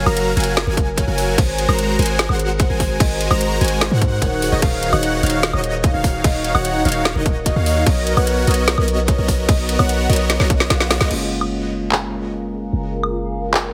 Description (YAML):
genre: future bass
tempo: 148 BPM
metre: 4/4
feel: half-time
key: F# major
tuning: A4 = 440 Hz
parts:
  - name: airy dreamy lead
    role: arpeggios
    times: 0.0-11.1 s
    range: D#5 to A#5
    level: -31 LUFS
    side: equal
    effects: chorus, sidechain pumping, digital delay
  - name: supersaw chords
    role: riff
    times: 0.0-11.1 s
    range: D#3 to A#5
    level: -25 LUFS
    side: equal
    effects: sidechain pumping, digital delay
  - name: warm 808-style bass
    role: bass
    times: 0.0-13.7 s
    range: D#1 to G#2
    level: -23 LUFS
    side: equal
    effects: sidechain pumping
  - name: kalimba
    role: melody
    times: 0.1-11.0 s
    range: G#4 to F#5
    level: -28 LUFS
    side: equal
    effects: sidechain pumping, tape echo
  - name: trap drum kit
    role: drums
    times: 0.1-13.6 s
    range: crash cymbal, handclaps, hi-hat, snare drum, woodblock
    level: -24 LUFS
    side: equal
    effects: none
  - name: electronic kick drum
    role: drums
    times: 0.8-10.8 s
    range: none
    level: -20 LUFS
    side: equal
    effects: none
  - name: tine electric piano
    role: accompaniment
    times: 11.1-13.7 s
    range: G#3 to E#4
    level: -27 LUFS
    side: equal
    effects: sidechain pumping, digital delay
  - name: shimmering ambient pad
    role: sustained chords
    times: 12.2-13.7 s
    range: E#4 to A#4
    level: -30 LUFS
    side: equal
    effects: chorus, built-in reverb, phaser, sidechain pumping
room: light reverb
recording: heavily compressed radio sound, multiband compression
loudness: -18 LUFS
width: mono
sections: 0.0-11.1 A section; 11.1-13.7 B section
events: drop 0.0-11.1; drum fill 10.3-11.1; band accent 11.0; filter sweep on ambient pad 11.1-13.7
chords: 0.0 F#maj9; 1.4 G#7; 4.4 D#m9; 7.9 Bmaj9; 11.1 F#maj9